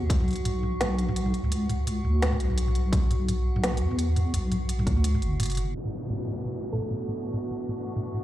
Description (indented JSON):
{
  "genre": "half-time drum and bass",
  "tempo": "170 BPM",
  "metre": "4/4",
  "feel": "swing 57% on 16ths, half-time",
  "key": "B minor",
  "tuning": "A4 = 440 Hz",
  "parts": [
    { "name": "deep soft wobble bass", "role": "bass", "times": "0.0-5.7 s", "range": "F#1 to E2", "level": "-25 LUFS", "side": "equal", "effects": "chorus" },
    { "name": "metallic inharmonic drone", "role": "texture", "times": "0.0-8.2 s", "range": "F#4", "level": "-36 LUFS", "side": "equal", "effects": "chorus, built-in reverb" },
    { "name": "electronic kick drum", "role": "drums", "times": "0.1-0.2, 2.9-4.9 s", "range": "none", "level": "-24 LUFS", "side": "equal", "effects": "studio reverb" },
    { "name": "organic electronic drum kit", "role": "drums", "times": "0.1-8.2 s", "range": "crash cymbal, hi-hat, snare drum, toms", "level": "-30 LUFS", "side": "equal", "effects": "studio reverb" },
    { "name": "muted studio cello section", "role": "sustained chords", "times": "5.7-8.2 s", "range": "B2 to F#4", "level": "-35 LUFS", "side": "equal", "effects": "sidechain pumping, low-pass filter" },
    { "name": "downlifter", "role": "sound effects", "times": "5.8-8.2 s", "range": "none", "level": "-37 LUFS", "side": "equal", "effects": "none" },
    { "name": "thumb-piano-like synth pluck", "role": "melody", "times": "6.7-7.0 s", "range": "A4", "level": "-39 LUFS", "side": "right 4 dB", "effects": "chorus, dub echo" }
  ],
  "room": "light reverb",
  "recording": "played on a big sound system in a bare room, large studio reverb, low-pass filter",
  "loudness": "-24 LUFS",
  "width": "side -14 dB against mid",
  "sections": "0.0-5.7 A section; 5.7-8.2 B section",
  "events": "filter sweep on cello section 5.7-8.2; filter sweep 5.7-8.2",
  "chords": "0.0 Bm",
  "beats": "| 0.10 0.46 0.81 1.16 | 1.51 1.87 2.22 2.57 | 2.92 3.28 3.63 3.98 | 4.34 4.69 5.04 5.40 | 5.75 6.10 6.46 6.81 | 7.16 7.51 7.87 8.22"
}